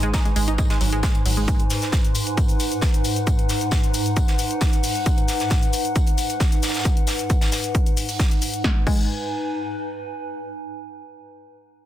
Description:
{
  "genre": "driving peak-time techno",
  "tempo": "134 BPM",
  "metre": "4/4",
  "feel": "straight",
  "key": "G# minor",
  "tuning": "A4 = 440 Hz",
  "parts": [
    { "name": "analog pluck", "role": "riff", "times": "0.0-1.4, 8.6-9.1 s", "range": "F#3 to D#4", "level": "-28 LUFS", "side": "right 2 dB", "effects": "chorus, sidechain pumping, dub echo" },
    { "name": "saturated sub bass", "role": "bass", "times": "0.0-1.5 s", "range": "G#1", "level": "-22 LUFS", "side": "equal", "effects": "sidechain pumping, low-pass filter" },
    { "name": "swarming drone", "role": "drone", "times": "0.0-8.7 s", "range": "G#2", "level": "-30 LUFS", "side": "equal", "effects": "built-in reverb, sidechain pumping" },
    { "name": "punchy analog drum machine", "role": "drums", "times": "0.0-9.0 s", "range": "crash cymbal, hi-hat, shaker, snare drum", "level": "-29 LUFS", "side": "left 3 dB", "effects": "overdrive" },
    { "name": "warbly tape-like pad", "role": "texture", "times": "0.0-10.4 s", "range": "D#4 to G#5", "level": "-27 LUFS", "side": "left 1 dB", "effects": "chorus, built-in reverb, sidechain pumping" },
    { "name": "crisp fusion drum kit", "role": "drums", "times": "0.1-8.3 s", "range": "hi-hat, snare drum, tambourine", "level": "-31 LUFS", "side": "equal", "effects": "sidechain pumping on hats, high-pass filter on hats, high-pass filter on snare, sidechain pumping on perc, high-pass filter on perc, high-pass filter on room" },
    { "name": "electronic kick drum", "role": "drums", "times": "0.1-9.0 s", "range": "none", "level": "-20 LUFS", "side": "equal", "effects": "overdrive" }
  ],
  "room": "light reverb, small room ambience",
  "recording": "dense, heavily limited modern master",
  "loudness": "-19 LUFS",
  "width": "side -12 dB against mid",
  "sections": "0.0-8.6 A section; 8.6-10.4 B section",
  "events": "none",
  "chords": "0.0 G#m",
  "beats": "0.14 0.58 1.03 | 1.48 1.93 2.38 2.82 | 3.27 3.72 4.17 4.61 | 5.06 5.51 5.96 6.40 | 6.85 7.30 7.75 8.20 | 8.64 9.09 9.54 9.99"
}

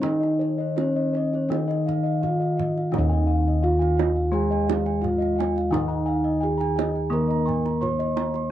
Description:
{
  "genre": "Javanese gamelan",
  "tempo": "86 BPM",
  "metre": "4/4",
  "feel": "straight",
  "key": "Eb slendro",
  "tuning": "A4 = 440 Hz",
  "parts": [
    { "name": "gamelan-type bronze metallophone", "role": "melody", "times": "0.0-8.5 s", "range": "Db4-45c to Db5-45c", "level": "-26 LUFS", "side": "right 1 dB", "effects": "none" },
    { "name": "gamelan-type bronze metallophone", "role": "accompaniment", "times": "0.0-8.5 s", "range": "Eb3 to Bb3+25c", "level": "-28 LUFS", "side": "left 2 dB", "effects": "none" },
    { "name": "gamelan-type bronze metallophone", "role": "arpeggios", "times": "0.0-8.5 s", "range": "Db5-45c to Db6-45c", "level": "-31 LUFS", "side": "right 4 dB", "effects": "none" },
    { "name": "gamelan-type bossed gongs", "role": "bass", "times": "0.0-8.5 s", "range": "Eb2 to F4+30c", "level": "-26 LUFS", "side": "left 1 dB", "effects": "none" },
    { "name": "kendang", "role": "percussion", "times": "0.0-8.4 s", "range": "none", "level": "-32 LUFS", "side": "right 12 dB", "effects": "none" },
    { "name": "gamelan-type bossed gongs", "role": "arpeggios", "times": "0.2-8.4 s", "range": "Db5-45c to Db6-45c", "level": "-33 LUFS", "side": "left 8 dB", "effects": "none" }
  ],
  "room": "light reverb",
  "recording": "dry, close 1970s-style studio recording",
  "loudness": "-21 LUFS",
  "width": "side -12 dB against mid",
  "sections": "0.0-2.9 A section; 2.9-8.5 B section",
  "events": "none",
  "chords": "none",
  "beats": "| 0.04 0.78 1.51 2.23 | 2.93 3.63 4.33 5.02 | 5.72 6.42 7.11 7.81 | 8.51"
}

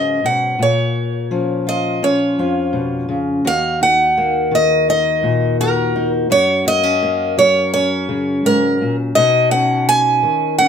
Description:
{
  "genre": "acoustic folk duo or small band",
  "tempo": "84 BPM",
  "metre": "4/4",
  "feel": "straight",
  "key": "Eb minor",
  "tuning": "A4 = 445 Hz",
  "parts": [
    { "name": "picked steel-string acoustic guitar", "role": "melody", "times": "0.0-10.7 s", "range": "Bb4 to Ab5", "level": "-15 LUFS", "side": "right 1 dB", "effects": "none" },
    { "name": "fingerpicked steel-string acoustic guitar", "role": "accompaniment", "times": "0.0-10.7 s", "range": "Eb2 to Gb4", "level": "-18 LUFS", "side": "left 2 dB", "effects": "none" }
  ],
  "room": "moderate studio reverb, RT60 0.6 s",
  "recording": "none",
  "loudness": "-14 LUFS",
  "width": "side -7 dB against mid",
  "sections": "0.0-3.5 A section; 3.5-10.7 B section",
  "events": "none",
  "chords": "0.0 Db7sus4; 0.6 Bbm; 3.5 Ebm; 6.3 Gb; 9.2 Badd9",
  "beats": "| 0.60 1.31 2.02 2.74 | 3.45 4.16 4.88 5.59 | 6.30 7.01 7.73 8.44 | 9.16 9.87 10.59"
}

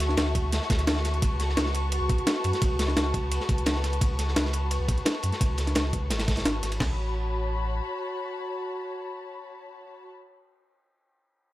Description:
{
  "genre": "liquid drum and bass",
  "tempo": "172 BPM",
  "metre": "4/4",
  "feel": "straight",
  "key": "A major",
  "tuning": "A4 = 440 Hz",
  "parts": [
    { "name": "muted studio string section", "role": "sustained chords", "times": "0.0-10.1 s", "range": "F#4 to C#6", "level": "-32 LUFS", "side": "left 2 dB", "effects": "sidechain pumping" },
    { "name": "sub bass with octave", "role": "bass", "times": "0.0-7.8 s", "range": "G#1 to F#2", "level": "-28 LUFS", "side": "equal", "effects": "none" },
    { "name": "breakbeat sampler-style drum kit", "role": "drums", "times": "0.0-6.8 s", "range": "hi-hat, snare drum", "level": "-28 LUFS", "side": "equal", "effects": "none" },
    { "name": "crunchy breakbeat drum kit", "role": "drums", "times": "0.0-6.8 s", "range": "ride cymbal, snare drum", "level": "-34 LUFS", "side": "equal", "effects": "high-pass filter on cymbals, high-pass filter on snare, high-pass filter on room" },
    { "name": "breakbeat sampler-style drum kit", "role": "drums", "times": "0.3-6.9 s", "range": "crash cymbal, kick drum, snare drum", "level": "-27 LUFS", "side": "equal", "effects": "none" }
  ],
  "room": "little or no reverb",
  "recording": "none",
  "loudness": "-24 LUFS",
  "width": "side -16 dB against mid",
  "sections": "0.0-6.8 A section; 6.8-9.6 B section",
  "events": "none",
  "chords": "0.0 Dmaj9; 1.2 A69/C#; 6.8 A69",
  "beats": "0.18 0.53 0.87 | 1.22 1.57 1.92 2.27 | 2.62 2.97 3.32 3.66 | 4.01 4.36 4.71 5.06 | 5.41 5.76 6.11 6.46 | 6.80 7.15 7.50 7.85 | 8.20 8.55 8.90 9.25"
}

